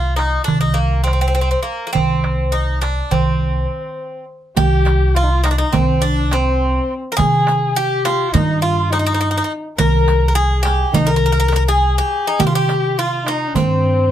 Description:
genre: Turkish makam ensemble.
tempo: 207 BPM (eighths).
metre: 9/8.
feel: straight.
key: C makam nihavent.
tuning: A4 = 437 Hz.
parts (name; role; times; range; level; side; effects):
Greek bouzouki; melody; 0.0-14.1 s; Bb3 to Bb4; -20 LUFS; right 1 dB; none.
upright bass; bass; 0.0-14.1 s; C2 to C3; -18 LUFS; equal; none.
darbuka; percussion; 0.2-13.9 s; none; -20 LUFS; right 4 dB; none.
warm kamancheh; second line; 4.6-14.1 s; C4 to Bb4; -21 LUFS; left 4 dB; none.
riq; percussion; 4.6-13.7 s; none; -26 LUFS; right 4 dB; none.
room: light reverb.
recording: close, detailed microphones.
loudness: -14 LUFS.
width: side -11 dB against mid.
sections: 0.0-4.6 A section; 4.6-14.1 B section.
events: break 3.7-4.6.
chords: none.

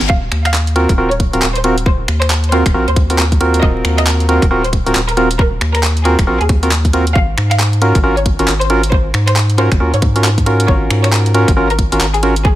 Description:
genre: UK garage, two-step garage.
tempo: 136 BPM.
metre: 4/4.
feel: swing 61% on 16ths.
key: Eb dorian.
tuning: A4 = 439 Hz.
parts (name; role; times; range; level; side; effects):
rubbery square bass; bass; 0.0-12.6 s; Eb1 to Ab2; -15 LUFS; equal; sidechain pumping.
garage drum kit; drums; 0.0-12.4 s; finger snaps, handclaps, hi-hat; -18 LUFS; equal; overdrive, studio reverb.
clear studio violin section; melody; 0.1-12.6 s; Ab4 to F5; -21 LUFS; equal; digital delay.
electronic kick drum; drums; 0.1-12.6 s; none; -13 LUFS; equal; overdrive, studio reverb.
percussive organ stab; stabs; 0.8-12.3 s; C4 to Bb4; -16 LUFS; right 1 dB; chorus.
room: little or no reverb.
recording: vinyl crackle.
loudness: -11 LUFS.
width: side -14 dB against mid.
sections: 0.0-12.6 A section.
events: none.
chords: 0.1 Ebm69; 7.2 Ab13sus4.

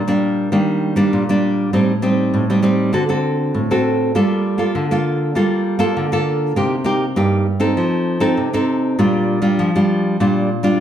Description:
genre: samba.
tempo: 99 BPM.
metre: 4/4.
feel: straight.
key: G minor.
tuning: A4 = 440 Hz.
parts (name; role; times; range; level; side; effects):
nylon-string guitar; solo; 0.0-10.8 s; G2 to A4; -15 LUFS; equal; none.
room: moderate large studio reverb, RT60 1.1 s.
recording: heard from further back in the room.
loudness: -15 LUFS.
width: side -10 dB against mid.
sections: 0.0-10.8 A section.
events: none.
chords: 0.0 Ebmaj7; 1.7 Am7b5; 2.9 D7; 4.1 Gm9; 6.6 Cm7; 7.8 F7; 9.0 Bb6.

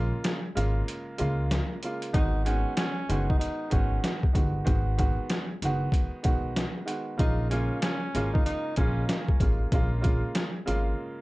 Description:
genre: hip hop, boom-bap hip-hop.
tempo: 95 BPM.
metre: 4/4.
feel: swing 62% on 16ths.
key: unclear.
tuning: A4 = 440 Hz.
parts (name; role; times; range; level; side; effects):
warm upright piano; accompaniment; 0.0-11.2 s; C#3 to F#4; -32 LUFS; right 2 dB; high-pass filter, low-pass filter, plate reverb.
upright bass; bass; 0.0-10.9 s; F#1 to C#2; -28 LUFS; equal; none.
trip hop sampler-style drum kit; drums; 0.2-10.9 s; hi-hat, kick drum, snare drum; -27 LUFS; equal; overdrive, vintage 12-bit sampler grit.
breathy tenor saxophone; melody; 2.1-9.1 s; C#4 to D#4; -34 LUFS; equal; high-pass filter, low-pass filter, plate reverb, analog delay.
room: little or no reverb.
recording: dark, warm production.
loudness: -25 LUFS.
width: side -20 dB against mid.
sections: 0.0-11.2 A section.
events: break 0.0-2.1, 11.0.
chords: 0.0 A#m7; 2.1 G#m7; 7.2 A#m7.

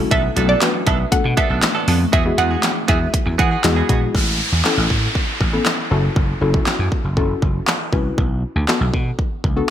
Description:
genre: dance-pop.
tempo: 119 BPM.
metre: 4/4.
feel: straight.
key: A major.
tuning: A4 = 439 Hz.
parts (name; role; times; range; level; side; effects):
soft round pluck; accompaniment; 0.0-9.7 s; G#3 to B4; -24 LUFS; left 4 dB; chorus, sidechain pumping.
granular cloud pad; sustained chords; 0.0-4.1 s; E3 to B4; -30 LUFS; equal; none.
direct-recorded clean electric guitar; riff; 0.0-4.1 s; B3 to A4; -24 LUFS; right 8 dB; lush chorus.
vintage slap bass; bass; 0.0-9.6 s; F#1 to E3; -20 LUFS; equal; sidechain pumping.
hollow square pluck; melody; 0.1-3.5 s; D5 to F#5; -22 LUFS; right 2 dB; chorus, sidechain pumping.
pop drum kit; drums; 0.1-9.6 s; handclaps, hi-hat, kick drum, snare drum; -19 LUFS; equal; none.
downlifter; sound effects; 4.1-8.2 s; none; -24 LUFS; equal; none.
room: light reverb.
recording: bright 1980s-style digital production.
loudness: -15 LUFS.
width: side -10 dB against mid.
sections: 0.0-4.1 A section; 4.1-9.7 B section.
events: drop 0.0-4.1.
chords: 0.1 Bm7; 2.1 Eadd9; 4.1 Aadd9; 5.9 F#m7; 8.2 Bm7.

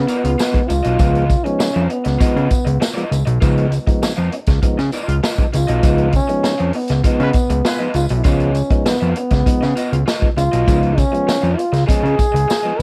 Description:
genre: funk.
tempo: 99 BPM.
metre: 4/4.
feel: straight.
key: Db mixolydian.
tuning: A4 = 440 Hz.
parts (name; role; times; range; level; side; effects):
mellow trombone; melody; 0.0-12.8 s; Cb4 to Ab4; -22 LUFS; equal; none.
fat analog bass; bass; 0.0-12.8 s; Cb2 to Db3; -20 LUFS; equal; none.
raw garage guitar; accompaniment; 0.1-12.8 s; F4 to F5; -29 LUFS; equal; overdrive, plate reverb.
tonewheel organ; stabs; 0.1-12.8 s; F3 to F4; -27 LUFS; equal; stopped rotary speaker, tape echo.
vintage drum kit; drums; 0.1-12.8 s; hi-hat, kick drum, snare drum; -20 LUFS; equal; none.
tambourine; percussion; 0.1-12.6 s; none; -38 LUFS; equal; none.
warm horn section; second line; 7.2-8.1 s; Ab3 to Cb5; -28 LUFS; equal; plate reverb.
room: light reverb.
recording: vinyl crackle.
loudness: -17 LUFS.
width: mono.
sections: 0.0-12.8 A section.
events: band accent 5.8-8.3.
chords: 0.0 Db9.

